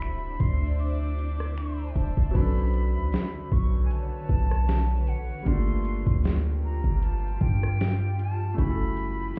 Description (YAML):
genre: contemporary R&B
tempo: 77 BPM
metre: 4/4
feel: swing 54% on 16ths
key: unclear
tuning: A4 = 440 Hz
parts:
  - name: breathy silver concert flute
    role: melody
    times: 0.0-9.4 s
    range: F#5 to D6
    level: -40 LUFS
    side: equal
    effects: delay
  - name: clear concert grand piano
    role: accompaniment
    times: 0.0-9.4 s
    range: F3 to A4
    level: -38 LUFS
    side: equal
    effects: none
  - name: granular cloud pad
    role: sustained chords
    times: 0.0-9.4 s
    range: D3 to A5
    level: -41 LUFS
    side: equal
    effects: built-in reverb, phaser
  - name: warm 808-style bass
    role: bass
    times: 0.0-9.3 s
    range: D1 to G2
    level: -28 LUFS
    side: equal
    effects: none
  - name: smooth R&B drum kit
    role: drums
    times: 0.0-9.4 s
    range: crash cymbal, finger snaps, hi-hat, kick drum, rim click, snare drum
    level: -28 LUFS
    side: equal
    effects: none
room: little or no reverb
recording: heard muffled through a wall, club reverb, EQ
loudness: -26 LUFS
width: mono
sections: 0.0-2.3 A section; 2.3-9.4 B section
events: none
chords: 0.0 Dm9; 2.3 Bm9; 5.5 Gm9; 8.6 F#m7